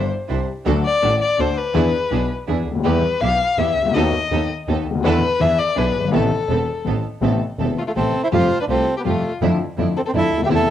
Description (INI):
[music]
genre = tango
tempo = 165 BPM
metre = 3/4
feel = rubato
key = A minor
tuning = A4 = 441 Hz
[part]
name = warm violin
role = second line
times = 0.0-10.7 s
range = F4 to F5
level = -21 LUFS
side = left 4 dB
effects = cassette tape
[part]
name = dark upright piano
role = accompaniment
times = 0.0-10.7 s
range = E1 to A4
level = -22 LUFS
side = left 5 dB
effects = cassette tape
[part]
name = clear symphonic string section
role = stabs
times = 0.0-10.7 s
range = F3 to C5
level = -26 LUFS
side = right 8 dB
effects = cassette tape
[part]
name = clear double bass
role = bass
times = 0.0-10.7 s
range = E1 to F2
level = -23 LUFS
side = right 3 dB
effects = none
[part]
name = bandoneon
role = melody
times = 7.8-10.7 s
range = A3 to A4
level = -20 LUFS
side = right 3 dB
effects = cassette tape
[sound]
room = moderate spring reverb, RT60 1.7 s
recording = home recording on cassette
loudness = -17 LUFS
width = side -11 dB against mid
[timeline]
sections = 0.0-7.2 A section; 7.2-10.7 B section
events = violin solo 0.0-7.2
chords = 0.0 Cadd9; 0.7 D; 1.8 E7; 2.9 Em; 4.0 B7/D#; 5.0 E7sus4; 5.4 E7; 6.1 Amadd9; 8.3 Fadd9; 9.4 Dmadd9/F